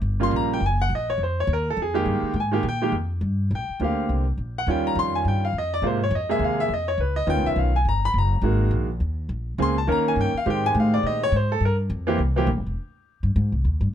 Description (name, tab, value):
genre	jazz piano trio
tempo	207 BPM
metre	4/4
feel	swing 60% on 8ths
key	F minor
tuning	A4 = 440 Hz
part	upright bass	bass	0.0-13.9 s	E1 to Bb2	-24 LUFS	equal	none
part	bright grand piano	melody	0.2-12.5 s	C3 to C6	-23 LUFS	right 1 dB	none
room	little or no reverb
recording	close, detailed microphones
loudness	-21 LUFS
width	side -10 dB against mid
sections	0.0-3.5 A section; 3.5-12.8 A section; 12.8-13.9 A section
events	grand piano solo 0.0-12.8; upright bass solo 12.8-13.9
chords	0.0 Gm7b5; 0.6 Gb; 1.2 Fm11; 3.5 Bb69; 4.7 Eb9; 5.8 Ab69; 7.0 Db9; 8.1 Gb69; 9.3 Bbm9; 9.9 Eb7; 10.5 Abmaj7; 11.6 Fsus24; 12.2 C7; 12.8 Cm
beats	| 0.03 0.32 0.61 0.90 | 1.19 1.48 1.77 2.06 | 2.35 2.64 2.93 3.22 | 3.51 3.80 4.09 4.38 | 4.67 4.96 5.25 5.54 | 5.83 6.12 6.41 6.70 | 6.99 7.28 7.57 7.86 | 8.14 8.43 8.72 9.01 | 9.30 9.59 9.88 10.17 | 10.46 10.75 11.04 11.32 | 11.61 11.90 12.19 12.48 | 12.77 13.06 13.35 13.63